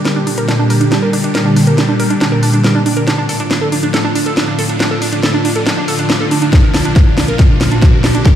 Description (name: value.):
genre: uplifting trance.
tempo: 139 BPM.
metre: 4/4.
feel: straight.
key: D minor.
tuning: A4 = 440 Hz.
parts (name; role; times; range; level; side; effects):
supersaw pad; sustained chords; 0.0-8.4 s; A2 to G4; -14 LUFS; equal; phaser, sidechain pumping.
riser; sound effects; 0.0-8.4 s; none; -28 LUFS; right 1 dB; none.
analog pluck; arpeggios; 0.1-8.3 s; D4 to Bb4; -18 LUFS; right 4 dB; chorus, sidechain pumping, tape echo.
house drum kit; drums; 0.1-8.3 s; hi-hat, snare drum; -18 LUFS; left 1 dB; overdrive, sidechain pumping on hats.
electronic kick drum; drums; 6.5-8.3 s; none; -8 LUFS; equal; overdrive.
room: light reverb.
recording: played on a big sound system in a bare room, stone room reverb.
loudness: -10 LUFS.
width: side -10 dB against mid.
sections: 0.0-8.4 A section.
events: build-up 0.0-8.4; drum fill 0.0-8.4.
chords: 0.0 Gm; 3.1 Dm; 6.5 Bb.